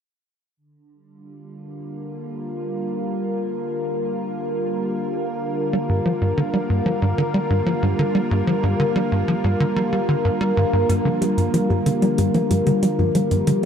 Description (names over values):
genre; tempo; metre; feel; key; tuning
ambient, sequencer-driven space music; 93 BPM; 4/4; straight; G minor; A4 = 442 Hz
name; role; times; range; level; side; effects
evolving wavetable pad; sustained chords; 1.3-13.7 s; D3 to Bb4; -22 LUFS; equal; chorus, built-in reverb
tight sequencer bass; riff; 5.7-13.5 s; G2 to G3; -20 LUFS; equal; lush chorus, tape echo
electronic hi-hat and congas; percussion; 10.9-13.7 s; none; -33 LUFS; right 1 dB; tape echo
soft round pluck; arpeggios; 11.1-13.7 s; F3 to G3; -24 LUFS; left 2 dB; chorus, auto-pan, tape echo
room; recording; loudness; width
moderate huge ambient reverb, RT60 8.6 s; none; -19 LUFS; side -8 dB against mid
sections
0.6-10.9 A section; 10.9-13.7 B section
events
filter sweep on analog synth bass 10.9-13.7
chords
0.6 Gm7